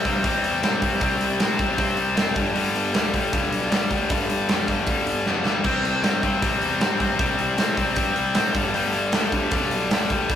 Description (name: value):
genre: punk rock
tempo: 155 BPM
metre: 4/4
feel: straight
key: unclear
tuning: A4 = 440 Hz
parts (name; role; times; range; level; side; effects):
- tight distorted guitar; riff; 0.0-10.4 s; G2 to C4; -22 LUFS; left 3 dB; distortion
- fuzz picked electric bass; bass; 0.0-10.4 s; F1 to A2; -31 LUFS; right 2 dB; overdrive
- big rock drum kit; drums; 0.1-10.4 s; crash cymbal, hi-hat, kick drum, snare drum; -24 LUFS; right 1 dB; none
room: light reverb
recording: rough rehearsal-room recording, warm saturation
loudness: -20 LUFS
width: side -9 dB against mid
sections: 0.0-10.4 A section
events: drum fill 5.3-5.7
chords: 0.0 C5; 2.4 G5; 5.7 C5; 8.6 G5